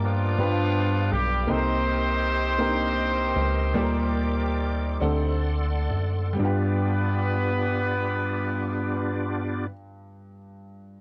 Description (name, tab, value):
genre	slow gospel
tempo	41-55 BPM (dotted quarters)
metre	6/8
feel	straight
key	unclear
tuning	A4 = 442 Hz
part	clear horn section	melody	0.0-9.7 s	F3 to C5	-30 LUFS	equal	none
part	clear grand piano	accompaniment	0.0-11.0 s	G2 to F#5	-32 LUFS	equal	none
part	bright tonewheel organ	sustained chords	0.0-9.7 s	B3 to D6	-36 LUFS	equal	fast rotary speaker, chorus vibrato
part	bell-like tine electric piano	bass	0.0-9.7 s	B1 to G2	-29 LUFS	equal	none
room	light reverb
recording	dry, close 1970s-style studio recording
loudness	-25 LUFS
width	mono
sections	0.0-6.4 A section; 6.4-11.0 B section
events	slowing down 1.5-6.4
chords	0.4 G7; 1.5 Cm7; 3.8 Gm/D; 5.0 D7; 6.4 G7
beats	0.39 | 1.49 2.60 | 3.76 5.01 | 6.39 7.86 | 9.32 10.79